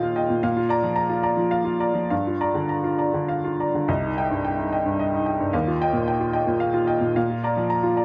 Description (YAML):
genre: neoclassical minimalist piano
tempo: 100-114 BPM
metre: 3/4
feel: rubato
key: C minor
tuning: A4 = 441 Hz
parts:
  - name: bright upright piano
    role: solo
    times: 0.0-8.0 s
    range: C2 to Bb5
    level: -23 LUFS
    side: equal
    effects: none
room: light reverb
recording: close, detailed microphones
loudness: -23 LUFS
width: mono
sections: 0.0-8.0 A section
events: none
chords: 0.4 Bb; 2.1 Gm7; 3.9 Cm; 5.5 Ebadd9; 7.2 Bb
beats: | 0.43 0.97 1.53 | 2.11 2.71 3.30 | 3.88 4.44 4.99 | 5.53 6.06 6.60 | 7.16 7.70